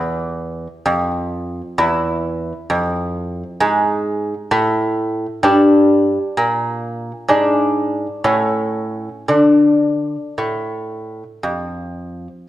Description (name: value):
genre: classical, baroque-style dance for lute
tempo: 55-67 BPM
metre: 4/4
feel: rubato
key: D minor from 5.4 s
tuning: A4 = 442 Hz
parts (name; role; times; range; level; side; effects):
- lute; solo; 0.0-12.5 s; E2 to E4; -16 LUFS; equal; none
room: moderate recital hall reverb, RT60 1.4 s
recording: dark, warm production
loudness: -15 LUFS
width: side -14 dB against mid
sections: 0.0-12.5 A section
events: none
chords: 0.0 N.C.; 1.8 E; 5.4 Gm; 7.3 N.C.; 8.3 A; 9.3 Dm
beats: 0.86 | 1.80 2.71 3.61 4.52 | 5.45 6.37 7.29 8.26 | 9.30 10.38 11.44 12.48